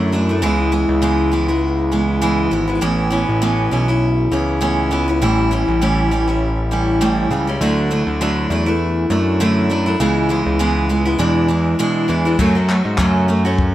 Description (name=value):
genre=acoustic pop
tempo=100 BPM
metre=4/4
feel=swing 55% on 16ths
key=A major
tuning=A4 = 441 Hz
part: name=picked steel-string acoustic guitar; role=accompaniment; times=0.0-13.7 s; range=E2 to F#4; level=-16 LUFS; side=equal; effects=none
part: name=fat analog bass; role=bass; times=0.0-13.7 s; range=G#1 to G#2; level=-19 LUFS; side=equal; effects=none
part: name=compact cocktail drum kit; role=drums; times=12.4-13.7 s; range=crash cymbal, handclaps, kick drum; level=-20 LUFS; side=left 2 dB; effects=none
room=little or no reverb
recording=none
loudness=-14 LUFS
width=side -13 dB against mid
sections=0.0-12.4 A section; 12.4-13.7 B section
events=none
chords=0.4 C#m7; 2.8 Aadd9; 5.2 A7; 7.6 Dadd9; 10.0 C#m7; 11.2 E7; 12.4 F#m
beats=| 0.43 1.03 1.62 2.22 | 2.82 3.42 4.02 4.62 | 5.22 5.81 6.41 7.01 | 7.61 8.21 8.80 9.40 | 10.00 10.60 11.19 11.79 | 12.39 12.99 13.59